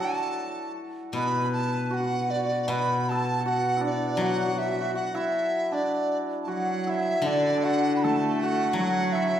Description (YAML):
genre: chinese traditional, Chinese chamber ensemble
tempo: 79 BPM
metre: 2/4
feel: rubato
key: D gong mode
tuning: A4 = 439 Hz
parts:
  - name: mellow hollow dizi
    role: melody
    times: 0.0-9.4 s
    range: D5 to B5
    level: -28 LUFS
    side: right 1 dB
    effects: none
  - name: hammered dulcimer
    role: second line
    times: 0.0-9.4 s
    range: A3 to B4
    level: -29 LUFS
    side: right 2 dB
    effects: none
  - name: steel-string zither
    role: accompaniment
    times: 0.0-9.4 s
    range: B2 to F#3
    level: -29 LUFS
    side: left 3 dB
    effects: none
  - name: rich cello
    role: second line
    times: 6.5-9.4 s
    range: D3 to A3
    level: -30 LUFS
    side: right 4 dB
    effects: none
room: wet recital hall reverb, RT60 1.4 s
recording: recorded in a church or concert hall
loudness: -24 LUFS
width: side -10 dB against mid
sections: 0.0-7.3 A section; 7.3-9.4 B section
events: none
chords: none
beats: 0.38 | 1.16 1.93 | 2.69 3.46 | 4.21 4.95 | 5.70 6.47 | 7.25 8.03 | 8.78